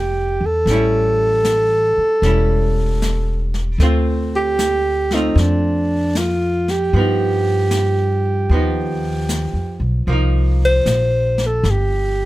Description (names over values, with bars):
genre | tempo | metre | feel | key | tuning
jazz ballad | 77 BPM | 4/4 | swing 68% on 8ths | unclear | A4 = 440 Hz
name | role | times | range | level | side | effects
breathy alto saxophone | melody | 0.0-12.3 s | D4 to C5 | -18 LUFS | right 1 dB | none
archtop guitar, miked and amplified | accompaniment | 0.0-12.3 s | F3 to F4 | -25 LUFS | equal | none
upright bass | bass | 0.0-12.3 s | E1 to G2 | -18 LUFS | equal | none
jazz brush drum kit | drums | 0.7-12.3 s | brushed snare drum, hi-hat, snare drum | -28 LUFS | left 1 dB | none
room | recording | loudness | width
little or no reverb | close, detailed microphones | -15 LUFS | side -16 dB against mid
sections
0.0-12.3 A section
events
none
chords
0.0 Bb6 (rootless); 0.7 A7; 3.8 Dm7; 6.9 Gaug7; 10.1 Cm7